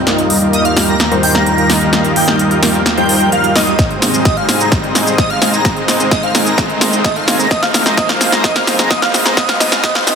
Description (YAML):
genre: EDM, festival progressive house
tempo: 129 BPM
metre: 4/4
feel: straight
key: unclear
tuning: A4 = 442 Hz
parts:
  - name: lush unison pad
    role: sustained chords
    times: 0.0-10.2 s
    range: Eb2 to F5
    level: -21 LUFS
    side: left 1 dB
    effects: chorus, sidechain pumping
  - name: dense compressed supersaw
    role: riff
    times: 0.0-10.2 s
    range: G3 to Ab5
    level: -16 LUFS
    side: equal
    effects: sidechain pumping, low-pass filter, digital delay
  - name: riser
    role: sound effects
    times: 0.0-10.2 s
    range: none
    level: -23 LUFS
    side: equal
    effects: none
  - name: big-room dance drum kit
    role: drums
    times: 0.1-10.2 s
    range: hi-hat, shaker, snare drum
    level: -15 LUFS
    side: equal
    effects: none
  - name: airy dreamy lead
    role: melody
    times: 0.5-10.2 s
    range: Eb5 to Bb5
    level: -17 LUFS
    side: right 1 dB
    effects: chorus, digital delay
  - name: electronic kick drum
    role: drums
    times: 3.8-9.9 s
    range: none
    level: -18 LUFS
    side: equal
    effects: none
room: moderate huge ambient reverb, RT60 9.0 s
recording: dense, heavily limited modern master, high-pass filter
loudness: -10 LUFS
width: side -6 dB against mid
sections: 0.0-10.2 A section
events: build-up 0.0-10.2; drum fill 0.0-10.2; riser 0.0-10.2; filter sweep on supersaw synth 0.0-10.2; filter sweep 0.0-10.2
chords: 0.1 Ebadd9; 3.8 Ab; 7.5 Fm